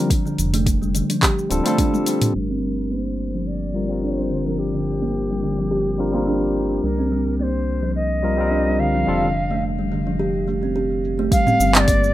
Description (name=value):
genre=organic downtempo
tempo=107 BPM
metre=4/4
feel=swing 54% on 16ths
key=G minor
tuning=A4 = 440 Hz
part: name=barky tine electric piano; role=accompaniment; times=0.0-9.3 s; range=G3 to Bb4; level=-25 LUFS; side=left 3 dB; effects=overdrive, sidechain pumping, digital delay, plate reverb
part: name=kalimba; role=arpeggios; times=0.0-12.1 s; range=D3 to G4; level=-22 LUFS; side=equal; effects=low-pass filter, digital delay
part: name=afro-pop drum kit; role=drums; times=0.1-12.1 s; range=cabasa, handclaps, hi-hat, toms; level=-21 LUFS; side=equal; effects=low-pass filter on hats, small room ambience, low-pass filter on perc, low-pass filter on snare, low-pass filter on toms
part: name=electronic kick drum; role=drums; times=0.1-1.9, 11.3-12.0 s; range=none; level=-20 LUFS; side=equal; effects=small room ambience
part: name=round analog bass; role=bass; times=0.4-12.1 s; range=D1 to C2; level=-26 LUFS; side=equal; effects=sidechain pumping
part: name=reedy Native American-style cedar flute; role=melody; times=2.3-12.1 s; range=G4 to F5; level=-25 LUFS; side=equal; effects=ping-pong delay
room=moderate studio reverb, RT60 0.5 s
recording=rough home demo mix, low-pass filter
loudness=-18 LUFS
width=side -14 dB against mid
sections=0.0-2.3 A section; 2.3-11.3 B section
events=drum fill 1.8-2.3; filter sweep on kalimba 2.3-11.3; filter sweep 2.3-11.3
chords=0.1 F69; 2.3 Gm7; 6.8 Cm7; 9.1 Fadd9; 11.3 Gm7